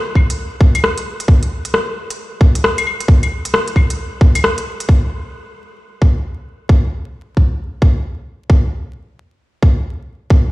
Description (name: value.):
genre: future garage.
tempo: 133 BPM.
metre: 4/4.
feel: swing 61% on 16ths.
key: none.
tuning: none.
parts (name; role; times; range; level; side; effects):
electronic kick drum; drums; 0.2-10.4 s; none; -9 LUFS; equal; none.
organic electronic drum kit; drums; 0.2-4.9 s; claves, hi-hat, rim click; -19 LUFS; left 1 dB; low-pass filter on hats, low-pass filter on snare, low-pass filter on perc.
room: light reverb.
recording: played on a big sound system in a bare room, stone room reverb, vinyl crackle.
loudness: -13 LUFS.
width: side -19 dB against mid.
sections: 0.0-4.9 A section; 4.9-10.5 B section.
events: none.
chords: none.